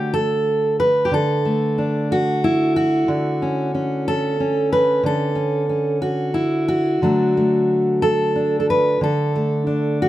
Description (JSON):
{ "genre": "folk, solo fingerstyle acoustic guitar", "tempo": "61 BPM (dotted quarters)", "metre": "6/8", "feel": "rubato", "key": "D major", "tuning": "A4 = 440 Hz", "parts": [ { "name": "fingerpicked steel-string acoustic guitar", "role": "solo", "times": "0.0-10.1 s", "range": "D3 to B4", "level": "-17 LUFS", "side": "equal", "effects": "none" } ], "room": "little or no reverb", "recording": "close, detailed microphones", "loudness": "-17 LUFS", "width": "side -14 dB against mid", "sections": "0.0-10.1 A section", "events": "none", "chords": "0.0 D; 3.1 A/D; 7.0 D" }